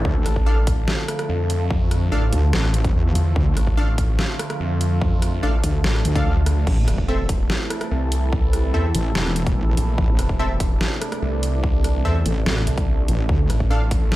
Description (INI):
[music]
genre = heavy wobble dubstep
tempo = 145 BPM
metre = 4/4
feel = half-time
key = A minor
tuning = A4 = 440 Hz
[part]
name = evolving wavetable pad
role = sustained chords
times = 0.0-14.2 s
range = C3 to A4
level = -28 LUFS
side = right 1 dB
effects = phaser, built-in reverb, sidechain pumping
[part]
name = wobble bass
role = bass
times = 0.0-13.5 s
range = E1 to E2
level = -20 LUFS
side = equal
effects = chorus, overdrive
[part]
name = electronic kick drum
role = drums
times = 0.1-14.0 s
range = none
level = -21 LUFS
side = equal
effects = overdrive
[part]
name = snarling distorted saw bass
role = bass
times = 0.3-14.1 s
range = E1 to F2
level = -21 LUFS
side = equal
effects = overdrive
[part]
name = dubstep drum kit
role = drums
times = 0.3-14.2 s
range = crash cymbal, hi-hat, rim click, snare drum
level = -26 LUFS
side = equal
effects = overdrive
[part]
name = supersaw stab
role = stabs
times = 0.5-13.8 s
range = C4 to F5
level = -28 LUFS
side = equal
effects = digital delay
[sound]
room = digital ambience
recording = played on a big sound system in a bare room, large studio reverb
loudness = -18 LUFS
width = side -16 dB against mid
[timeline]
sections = 0.0-14.2 A section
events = none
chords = 0.1 Dm; 6.7 Am; 13.3 Dm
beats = | 0.05 0.46 0.88 1.29 | 1.71 2.12 2.53 2.95 | 3.36 3.77 4.19 4.60 | 5.01 5.43 5.84 6.26 | 6.67 7.08 7.50 7.91 | 8.33 8.74 9.15 9.57 | 9.98 10.39 10.81 11.22 | 11.64 12.05 12.46 12.88 | 13.29 13.71 14.12